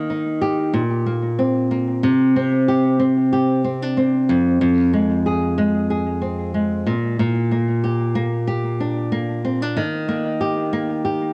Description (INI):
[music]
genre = pop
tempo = 93 BPM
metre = 4/4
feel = swing 55% on 16ths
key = C minor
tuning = A4 = 440 Hz
[part]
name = flamenco guitar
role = solo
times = 0.0-11.3 s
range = F2 to Ab4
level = -20 LUFS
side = equal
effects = cassette tape, analog delay
[sound]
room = wet booth ambience, RT60 0.2 s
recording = home recording on cassette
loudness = -20 LUFS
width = mono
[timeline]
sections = 0.0-2.0 A section; 2.0-11.3 B section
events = none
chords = 0.0 Eb; 0.7 Bbsus2; 2.0 Csus2; 4.3 Fm; 6.9 Bb6; 9.8 Eb